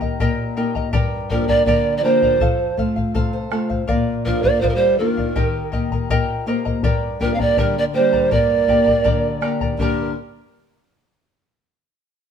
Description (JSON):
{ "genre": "andean folk, Andean ensemble", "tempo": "81 BPM", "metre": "2/4", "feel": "straight", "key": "G minor", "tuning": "A4 = 440 Hz", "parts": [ { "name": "charango", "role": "accompaniment", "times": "0.0-10.1 s", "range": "G4 to Bb5", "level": "-26 LUFS", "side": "left 1 dB", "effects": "none" }, { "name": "nylon-string guitar", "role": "accompaniment", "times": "0.0-10.1 s", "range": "F2 to G5", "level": "-24 LUFS", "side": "left 3 dB", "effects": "none" }, { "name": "bombo", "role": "percussion", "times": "0.0-10.1 s", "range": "none", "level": "-23 LUFS", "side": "left 2 dB", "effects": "none" }, { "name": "breathy polished pan flute", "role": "melody", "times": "1.3-10.1 s", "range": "Bb4 to F5", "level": "-18 LUFS", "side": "right 4 dB", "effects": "none" }, { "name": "mellow alto saxophone", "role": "second line", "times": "1.3-10.1 s", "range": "Eb3 to G4", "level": "-25 LUFS", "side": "right 2 dB", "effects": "none" } ], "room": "moderate stone room reverb, RT60 1.2 s", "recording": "band playing live in one room", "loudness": "-16 LUFS", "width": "side -7 dB against mid", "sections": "0.0-9.8 A section; 9.8-11.3 B section", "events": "nylon-string guitar fill 2.8-3.9, 5.7-6.8", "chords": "0.0 Eb; 0.9 Gm; 2.4 F; 3.9 Bb; 5.4 Eb; 6.8 Gm" }